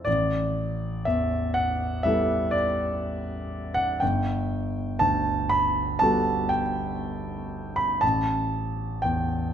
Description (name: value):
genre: classical, impressionist solo piano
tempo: 60 BPM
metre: 4/4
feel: rubato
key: unclear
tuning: A4 = 439 Hz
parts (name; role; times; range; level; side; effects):
- clear grand piano; solo; 0.0-9.5 s; G1 to B5; -23 LUFS; equal; none
room: moderate recital hall reverb, RT60 1.4 s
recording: none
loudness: -23 LUFS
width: side -9 dB against mid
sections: 0.0-9.5 A section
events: none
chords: 0.1 A9sus4; 4.0 Gmaj9; 8.0 A7(no3)